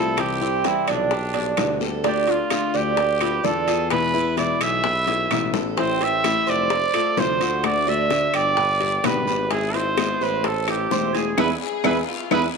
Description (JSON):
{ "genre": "latin, Cuban son and guajira", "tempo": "129 BPM", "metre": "4/4", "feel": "straight", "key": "unclear", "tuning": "A4 = 440 Hz", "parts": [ { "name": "warm trumpet", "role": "melody", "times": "0.0-12.4 s", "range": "D4 to E5", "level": "-23 LUFS", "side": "right 3 dB", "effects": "none" }, { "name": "nylon-string guitar", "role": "accompaniment", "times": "0.0-12.5 s", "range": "B2 to G4", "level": "-27 LUFS", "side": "left 12 dB", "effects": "none" }, { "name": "Cuban tres", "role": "arpeggios", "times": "0.0-12.5 s", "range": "C4 to D5", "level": "-25 LUFS", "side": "right 8 dB", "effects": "none" }, { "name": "warm tuba", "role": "bass", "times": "0.0-12.5 s", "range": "E1 to E2", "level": "-29 LUFS", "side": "equal", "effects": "none" }, { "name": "bongos", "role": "percussion", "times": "0.2-12.4 s", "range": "none", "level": "-29 LUFS", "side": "left 13 dB", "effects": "none" }, { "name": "claves", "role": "percussion", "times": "0.2-12.4 s", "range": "none", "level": "-31 LUFS", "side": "left 14 dB", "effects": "none" }, { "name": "guiro", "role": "percussion", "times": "0.2-12.4 s", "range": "none", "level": "-36 LUFS", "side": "left 14 dB", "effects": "none" }, { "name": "timbales", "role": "percussion", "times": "0.2-12.4 s", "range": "none", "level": "-31 LUFS", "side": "right 14 dB", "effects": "none" }, { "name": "rich studio violin section", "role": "second line", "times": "11.6-12.6 s", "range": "E4 to G#4", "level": "-28 LUFS", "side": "left 13 dB", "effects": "none" } ], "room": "moderate echo chamber reverb, RT60 1.7 s, studio reverb", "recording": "1960s-style stereo with parts hard left and right", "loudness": "-19 LUFS", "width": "side -5 dB against mid", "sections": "0.0-12.6 A section", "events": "drum fill 5.1-5.8; band accent 11.4-12.6", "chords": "0.2 C; 1.1 G/B; 2.0 Dm; 3.0 Bdim/D; 3.9 E; 5.8 Am; 6.7 F; 7.6 D; 8.6 G; 9.5 E/G#; 10.4 Am; 11.4 E", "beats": "| 0.18 0.65 1.11 1.58 | 2.04 2.51 2.98 3.44 | 3.91 4.38 4.84 5.31 | 5.78 6.24 6.71 7.18 | 7.64 8.11 8.58 9.04 | 9.51 9.98 10.45 10.91 | 11.38 11.85 12.32" }